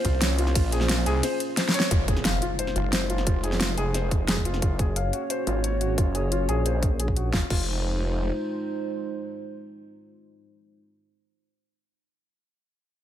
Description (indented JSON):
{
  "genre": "dark technical drum and bass",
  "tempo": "177 BPM",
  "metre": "4/4",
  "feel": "straight",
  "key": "F phrygian",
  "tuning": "A4 = 441 Hz",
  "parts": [
    { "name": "dark analog pad", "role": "sustained chords", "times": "0.0-10.8 s", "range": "Ab3 to Db5", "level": "-32 LUFS", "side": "right 2 dB", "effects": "wide subtle chorus, sidechain pumping" },
    { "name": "felt-muted upright piano", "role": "arpeggios", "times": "0.0-7.6 s", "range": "F4 to F5", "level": "-30 LUFS", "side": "left 3 dB", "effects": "sidechain pumping, low-pass filter, tape echo" },
    { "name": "snarling distorted saw bass", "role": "bass", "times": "0.0-8.3 s", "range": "F1 to C2", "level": "-26 LUFS", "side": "equal", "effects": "tube saturation, sidechain pumping" },
    { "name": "dubstep drum kit", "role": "drums", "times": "0.0-7.6 s", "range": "crash cymbal, hi-hat, ride cymbal, snare drum", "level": "-27 LUFS", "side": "equal", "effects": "overdrive" },
    { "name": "electronic kick drum", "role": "drums", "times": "0.0-7.6 s", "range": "none", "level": "-24 LUFS", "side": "equal", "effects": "none" },
    { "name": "impact", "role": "sound effects", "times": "1.9-3.3 s", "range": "none", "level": "-33 LUFS", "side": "equal", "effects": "none" }
  ],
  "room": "little or no reverb",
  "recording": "none",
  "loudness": "-23 LUFS",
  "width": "side -11 dB against mid",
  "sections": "0.0-1.9 A section; 1.9-7.3 B section; 7.3-10.0 C section",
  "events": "drop 0.0-1.9; drum fill 1.6-1.9; band accent 1.8; impact 1.9-3.3; filter sweep on detuned saw bass 1.9-7.3",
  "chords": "0.0 Bbmadd9; 1.9 Fm7; 4.6 Gb; 7.3 Fm7"
}